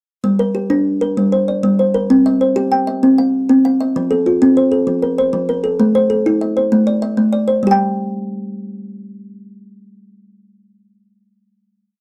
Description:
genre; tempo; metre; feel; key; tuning
southern african traditional; 130 BPM (dotted quarters); 12/8; straight; G equiheptatonic; A4 = 440 Hz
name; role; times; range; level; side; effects
kalimba; solo; 0.2-11.7 s; F3+29c to G5; -16 LUFS; equal; none
room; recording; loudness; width
moderate booth ambience, RT60 0.2 s; dry, close 1970s-style studio recording; -15 LUFS; mono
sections
0.2-7.6 A section; 7.6-11.3 final note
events
none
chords
0.2 Gm; 2.1 C; 4.0 F; 5.8 Am; 7.6 G5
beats
| 0.25 0.71 1.18 1.64 | 2.10 2.57 3.03 3.49 | 3.95 4.42 4.88 5.34 | 5.80 6.26 6.72 7.18 | 7.63 8.10 8.55 9.02 | 9.48 9.94 10.40 10.86

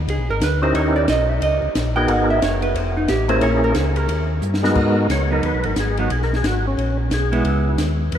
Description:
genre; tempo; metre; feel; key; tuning
soul jazz organ trio; 179 BPM; 4/4; swing 63% on 8ths; G# minor; A4 = 435 Hz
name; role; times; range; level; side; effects
mellow tonewheel organ; bass; 0.0-8.2 s; F1 to G#2; -21 LUFS; left 1 dB; slow rotary speaker
vintage hollow-body jazz guitar; accompaniment; 0.1-7.8 s; F#3 to G5; -23 LUFS; right 3 dB; none
compact cocktail drum kit; drums; 0.1-8.2 s; crash cymbal, hi-hat, kick drum, ride cymbal, snare drum; -26 LUFS; equal; none
percussive tonewheel organ; melody; 0.6-8.2 s; G#3 to C#5; -22 LUFS; equal; slow rotary speaker, overdrive, chorus vibrato
room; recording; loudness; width
wet cathedral reverb, RT60 5.5 s; in a vast, echoing space; -16 LUFS; side -9 dB against mid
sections
0.0-4.8 A section; 4.8-8.2 A section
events
hollow-body jazz guitar solo 0.0-4.8; drum fill 4.4-4.8; tonewheel organ solo 4.8-8.2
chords
0.0 Emaj7; 0.8 D#7b9; 2.1 G#m7; 2.8 F; 3.4 A#m7b5; 4.1 D#; 4.8 G#m7; 7.4 C#m7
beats
0.09 0.42 | 0.75 1.08 1.42 1.75 | 2.08 2.42 2.75 3.09 | 3.42 3.75 4.09 4.42 | 4.76 5.09 5.43 5.77 | 6.10 6.44 6.77 7.11 | 7.44 7.78 8.12

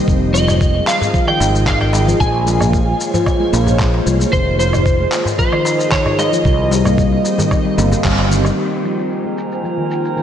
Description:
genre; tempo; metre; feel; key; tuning
organic downtempo; 113 BPM; 4/4; straight; F minor; A4 = 436 Hz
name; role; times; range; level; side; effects
ethereal airy pad; sustained chords; 0.0-10.2 s; Bb3 to Ab5; -22 LUFS; right 2 dB; ensemble chorus, built-in reverb, tremolo, sidechain pumping
handpan; arpeggios; 0.0-10.2 s; Eb3 to Bb3; -19 LUFS; left 2 dB; low-pass filter, diffuse ambient delay
fretless electric bass; bass; 0.1-8.5 s; F1 to C2; -16 LUFS; equal; tube saturation, analog chorus, sidechain pumping
dusty soul sampler-style drum kit; drums; 0.1-10.2 s; crash cymbal, handclaps, shaker, woodblock; -24 LUFS; equal; low-pass filter on perc, studio reverb, low-pass filter on snare, low-pass filter on cymbals
electronic kick drum; drums; 0.1-8.2 s; none; -18 LUFS; equal; studio reverb
electric slide guitar; melody; 0.3-7.7 s; C5 to Ab5; -20 LUFS; right 1 dB; analog chorus, diffuse ambient delay
darbuka; percussion; 0.3-8.3 s; none; -26 LUFS; left 1 dB; none
drifting glass-harmonics texture; texture; 9.0-10.2 s; Bb3 to Bb4; -28 LUFS; right 6 dB; chorus, built-in reverb
room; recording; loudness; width
moderate lush hall reverb, RT60 2.2 s; dreamy mix soaked in reverb, nothing above 10.5 kHz; -13 LUFS; side -9 dB against mid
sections
0.0-8.6 A section; 8.6-10.2 B section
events
band accent 8.0; filter sweep on ambient pad 8.6-10.2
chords
0.1 Fm7; 2.2 Bbm7; 4.3 Fm7; 6.5 Cm; 8.6 Fm7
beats
| 0.08 0.61 1.14 1.67 | 2.20 2.73 3.27 3.80 | 4.33 4.86 5.39 5.92 | 6.45 6.98 7.51 8.04 | 8.57 9.11 9.64 10.17

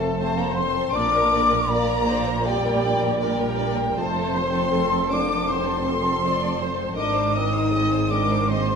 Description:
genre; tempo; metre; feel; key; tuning
cinematic; 80 BPM; 4/4; rubato; F major; A4 = 445 Hz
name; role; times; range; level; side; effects
rich studio violin section; melody; 0.0-8.8 s; A4 to Eb5; -30 LUFS; left 4 dB; none
mellow hollow concert flute; second line; 0.0-8.8 s; G5 to Eb6; -25 LUFS; left 2 dB; none
warm studio violin section; second line; 0.0-8.8 s; G5 to Eb6; -31 LUFS; equal; none
felt-muted upright piano; accompaniment; 0.0-8.8 s; C2 to C5; -32 LUFS; left 1 dB; none
warm studio viola section; accompaniment; 0.0-8.8 s; Bb3 to D5; -30 LUFS; right 2 dB; none
mellow French horn section; sustained chords; 0.0-8.8 s; G3 to Eb4; -26 LUFS; left 3 dB; none
dark studio cello section; bass; 0.0-8.8 s; F2 to Bb2; -28 LUFS; right 5 dB; none
warm studio double bass section; bass; 0.0-8.8 s; F1 to Bb1; -30 LUFS; right 4 dB; none
room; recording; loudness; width
wet scoring stage reverb, RT60 1.9 s; minimal, uncompressed stereo recording; -20 LUFS; side -6 dB against mid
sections
0.0-8.8 A section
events
none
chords
0.0 F; 1.0 Bb; 4.0 F; 7.0 Ab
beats
0.21 | 0.96 1.71 2.47 3.21 | 3.97 4.72 5.48 6.23 | 6.97 7.73 8.49

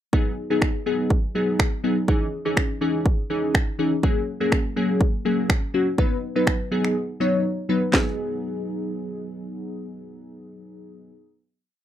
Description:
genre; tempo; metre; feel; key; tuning
dance-pop; 123 BPM; 4/4; straight; G# minor; A4 = 442 Hz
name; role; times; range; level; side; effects
glassy digital keys; accompaniment; 0.1-11.1 s; E3 to C#5; -24 LUFS; left 1 dB; chorus
house drum kit; drums; 0.1-8.1 s; finger snaps, handclaps, kick drum, snare drum; -21 LUFS; right 1 dB; none
room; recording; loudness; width
little or no reverb; dry, close 1970s-style studio recording; -21 LUFS; side -11 dB against mid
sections
0.1-7.9 verse; 7.9-11.8 final chord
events
silent gap 7.0-7.9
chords
0.1 G#m7; 2.1 C#madd9; 4.0 F#add9; 6.0 B; 7.9 G#m7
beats
| 0.13 0.62 1.11 1.59 | 2.08 2.57 3.06 3.54 | 4.03 4.52 5.01 5.50 | 5.98 6.47 6.96 7.45 | 7.94 8.42 8.91 9.40 | 9.89 10.38 10.86

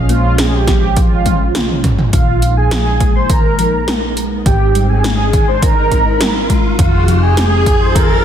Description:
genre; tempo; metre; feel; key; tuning
synthwave; 103 BPM; 4/4; straight; unclear; A4 = 440 Hz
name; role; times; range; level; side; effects
warm analog pad; sustained chords; 0.0-8.2 s; F3 to Ab4; -24 LUFS; equal; chorus, sidechain pumping
hollow-body short-scale picked electric bass; bass; 0.0-8.2 s; F1 to Bb1; -17 LUFS; equal; sidechain pumping
mellow synth brass; melody; 0.1-8.2 s; F4 to C5; -18 LUFS; right 2 dB; chorus, ping-pong delay
thumb-piano-like synth pluck; arpeggios; 0.1-8.1 s; Eb3 to Db4; -22 LUFS; left 3 dB; chorus, ping-pong delay
80s electronic pad drums; drums; 0.1-8.1 s; hi-hat, snare drum, toms; -19 LUFS; equal; gated reverb on snare and toms
electronic kick drum; drums; 0.7-8.1 s; none; -14 LUFS; equal; none
airy dreamy lead; second line; 2.1-8.2 s; F5 to C6; -22 LUFS; right 1 dB; chorus, ping-pong delay
riser; sound effects; 3.6-8.2 s; none; -23 LUFS; equal; none
room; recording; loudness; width
light reverb; dense, heavily limited modern master; -10 LUFS; side -9 dB against mid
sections
0.0-2.1 A section; 2.1-8.2 B section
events
drum fill 1.3-2.1; filter sweep on analog synth pad 2.1-8.2; filter sweep on synth arpeggio sound 2.1-8.2; riser 3.6-8.2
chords
0.0 Bbm; 2.1 Bb7sus4; 4.5 Abmaj7; 6.8 Fm7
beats
0.38 0.97 1.55 | 2.13 2.71 3.30 3.88 | 4.46 5.04 5.63 6.21 | 6.79 7.37 7.96

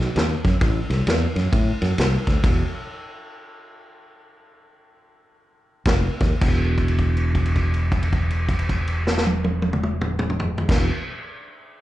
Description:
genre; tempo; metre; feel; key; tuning
electric blues shuffle; 105-132 BPM; 4/4; swing 64% on 8ths; unclear; A4 = 440 Hz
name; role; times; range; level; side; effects
fingered electric bass; bass; 0.0-2.6, 5.9-10.9 s; E1 to A2; -21 LUFS; equal; none
vintage drum kit; drums; 0.0-2.6, 5.9-10.8 s; crash cymbal, kick drum, ride cymbal, snare drum, toms; -22 LUFS; equal; none
room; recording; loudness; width
light reverb; live gig heard through the venue's PA, club reverb, nothing above 10.4 kHz; -19 LUFS; side -15 dB against mid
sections
0.0-6.4 A section; 6.4-11.0 B section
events
slowing down 2.4-6.4; stop 2.4-5.9; held note 6.4-10.6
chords
none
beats
0.16 | 0.61 1.07 1.53 1.98 | 2.44 2.90 3.36 3.83 | 4.32 4.81 5.32 5.86 | 6.41 6.98 7.55 8.12 | 8.69 9.26 9.83 10.40

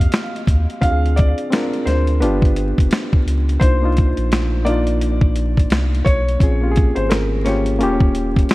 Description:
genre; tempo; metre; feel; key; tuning
lo-fi hip hop; 86 BPM; 4/4; swing 61% on 16ths; C minor; A4 = 440 Hz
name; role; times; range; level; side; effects
felt-muted upright piano; melody; 0.0-8.1 s; Bb4 to F5; -25 LUFS; left 1 dB; low-pass filter, analog delay
barky reed electric piano; accompaniment; 0.0-8.5 s; Bb3 to Bb4; -21 LUFS; left 1 dB; low-pass filter
warm sub bass; bass; 0.0-8.5 s; Eb1 to Eb2; -18 LUFS; equal; none
boom bap sampler-style drum kit; drums; 0.0-8.5 s; hi-hat, kick drum, snare drum; -17 LUFS; equal; none
room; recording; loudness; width
light reverb, digital ambience; vinyl crackle; -14 LUFS; side -19 dB against mid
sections
0.0-3.6 A section; 3.6-8.5 B section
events
none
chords
0.0 Eb6; 0.8 Dm7b5; 2.2 G7; 3.6 Cm11; 6.4 Bbm7; 7.8 Eb9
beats
0.12 | 0.81 1.51 2.21 2.91 | 3.61 4.30 5.00 5.70 | 6.40 7.09 7.79 8.49

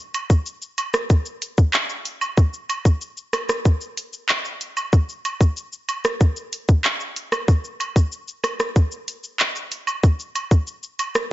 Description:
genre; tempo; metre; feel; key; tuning
dancehall; 94 BPM; 4/4; straight; none; none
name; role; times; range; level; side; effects
island pop drum kit; drums; 0.1-11.3 s; handclaps, hi-hat, kick drum, rim click, shaker; -18 LUFS; equal; none
cabasa and woodblock; percussion; 0.1-11.1 s; none; -28 LUFS; right 3 dB; none
room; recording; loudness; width
digital ambience; nothing above 7.6 kHz; -19 LUFS; side -15 dB against mid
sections
0.0-11.3 A section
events
none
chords
none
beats
0.46 1.10 1.74 | 2.38 3.01 3.65 4.29 | 4.93 5.57 6.21 6.84 | 7.48 8.12 8.76 9.40 | 10.04 10.67

